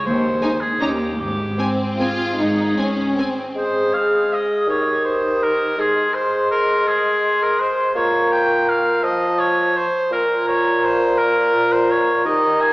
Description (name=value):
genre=classical, orchestral ballroom waltz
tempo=143-182 BPM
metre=3/4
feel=rubato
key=Ab major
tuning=A4 = 440 Hz
part: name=warm oboe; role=second line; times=0.0-12.7 s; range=G4 to Ab5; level=-20 LUFS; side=equal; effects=none
part: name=rich studio cello section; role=bass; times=0.0-2.7 s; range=Eb2 to Ab2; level=-24 LUFS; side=equal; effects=none
part: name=rich studio double bass section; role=bass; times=0.0-2.7 s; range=Ab1 to Eb2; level=-28 LUFS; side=equal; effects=none
part: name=rich studio violin section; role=melody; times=0.4-3.3 s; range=Ab5 to Bb5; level=-33 LUFS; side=left 1 dB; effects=none
part: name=clear symphonic violin section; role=second line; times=0.4-3.6 s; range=C4 to F4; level=-23 LUFS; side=equal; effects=none
part: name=rich studio viola section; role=accompaniment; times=0.4-3.3 s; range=Ab3 to Db4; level=-28 LUFS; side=equal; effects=none
part: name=mellow wooden flute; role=second line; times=3.6-12.7 s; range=A5 to Eb6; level=-24 LUFS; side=left 1 dB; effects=none
part: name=warm clarinet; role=second line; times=3.6-12.7 s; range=F4 to Ab4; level=-26 LUFS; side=left 1 dB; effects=none
part: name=clear bassoon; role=accompaniment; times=3.6-12.7 s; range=Bb2 to Bb3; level=-21 LUFS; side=equal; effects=none
room=wet concert hall reverb, RT60 2.2 s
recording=heard from further back in the room, small speaker sound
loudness=-16 LUFS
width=side -21 dB against mid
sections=0.0-3.6 A section; 3.6-12.7 A section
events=none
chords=0.0 Ab/Eb; 0.8 Eb; 1.2 Ab; 4.7 Eb7; 5.8 Ab; 8.0 Bbm; 9.0 F7; 10.1 Bbm